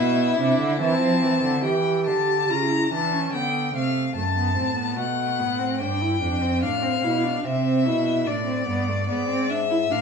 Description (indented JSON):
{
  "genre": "classical, baroque-style fugue for string quartet",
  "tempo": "73 BPM",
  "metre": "3/4",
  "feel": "straight",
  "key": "unclear",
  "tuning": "A4 = 441 Hz",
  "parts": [
    { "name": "rich violin", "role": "melody", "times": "0.0-10.0 s", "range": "D5 to Bb5", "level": "-25 LUFS", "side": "left 8 dB", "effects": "none" },
    { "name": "warm violin", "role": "second line", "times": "0.0-1.7 s", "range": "E4", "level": "-28 LUFS", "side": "left 1 dB", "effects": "none" },
    { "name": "rich viola", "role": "accompaniment", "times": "0.0-10.0 s", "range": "A3 to G4", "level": "-25 LUFS", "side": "right 2 dB", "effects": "none" },
    { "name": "rich cello", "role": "bass", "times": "0.0-10.0 s", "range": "F2 to F3", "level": "-26 LUFS", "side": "right 4 dB", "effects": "none" }
  ],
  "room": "light reverb",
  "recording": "small room reverb",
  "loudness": "-20 LUFS",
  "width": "side -6 dB against mid",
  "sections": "0.0-1.7 A section; 1.7-10.0 B section",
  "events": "none",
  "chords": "0.0 E7(no3); 0.8 Am/E; 1.7 A7; 3.3 Dm; 4.2 B5/F#; 5.8 Em/G; 6.6 F/A; 8.3 Gadd9; 9.1 E7/G#"
}